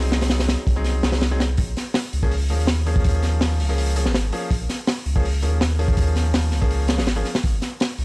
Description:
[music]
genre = drum and bass, jungle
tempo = 164 BPM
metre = 4/4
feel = straight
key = Bb minor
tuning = A4 = 441 Hz
[part]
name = clear concert grand piano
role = stabs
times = 0.0-7.3 s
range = F3 to Ab4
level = -29 LUFS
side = left 1 dB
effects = dub echo
[part]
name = saturated sub bass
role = bass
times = 0.0-8.0 s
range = Ab1 to Eb2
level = -21 LUFS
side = equal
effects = tube saturation
[part]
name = crunchy breakbeat drum kit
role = drums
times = 0.0-8.0 s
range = hi-hat, kick drum, snare drum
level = -22 LUFS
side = equal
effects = none
[sound]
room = small room ambience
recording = dry, gritty hardware recording, cassette tape, lossy compression artefacts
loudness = -18 LUFS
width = side -25 dB against mid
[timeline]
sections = 0.0-8.0 A section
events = none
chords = 0.0 Ab7; 1.6 Bbm7; 7.4 Ab

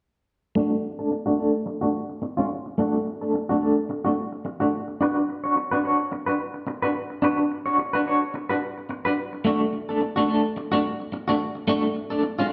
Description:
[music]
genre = disco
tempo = 108 BPM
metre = 4/4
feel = swing 56% on 16ths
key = D major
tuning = A4 = 440 Hz
[part]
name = clean electric guitar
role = accompaniment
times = 0.6-12.5 s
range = A3 to C#5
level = -25 LUFS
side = equal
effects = tremolo, low-pass filter
[sound]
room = wet large studio reverb, RT60 1.2 s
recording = band playing live in one room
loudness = -25 LUFS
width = mono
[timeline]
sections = 0.6-12.5 A section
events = filter sweep on clean electric guitar 0.6-12.5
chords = 0.6 D; 5.0 D6; 9.5 D

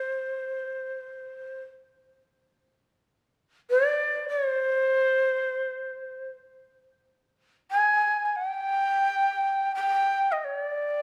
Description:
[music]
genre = japanese traditional, Japanese chamber music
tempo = free time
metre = none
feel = none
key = unclear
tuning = A4 = 441 Hz
[part]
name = breathy shakuhachi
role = solo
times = 0.0-11.0 s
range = C5 to Ab5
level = -27 LUFS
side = equal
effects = none
[sound]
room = moderate concert hall reverb, RT60 2.2 s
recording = none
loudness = -26 LUFS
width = mono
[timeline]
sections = 0.0-6.6 A section; 6.6-11.0 A section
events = none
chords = none

